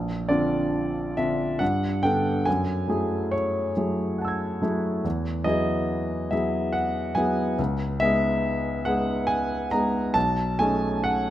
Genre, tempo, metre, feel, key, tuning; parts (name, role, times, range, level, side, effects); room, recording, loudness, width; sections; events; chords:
classical, impressionist solo piano; 70 BPM; 3/4; rubato; A4 = 438 Hz
clear grand piano; solo; 0.0-11.3 s; A#1 to G#6; -22 LUFS; equal
light reverb; close, detailed microphones; -22 LUFS; side -13 dB against mid
0.0-11.3 A section
0.0 A#add9; 1.6 Gadd9; 2.5 F#m9; 5.0 Emaj9; 7.6 C#m9; 10.2 B13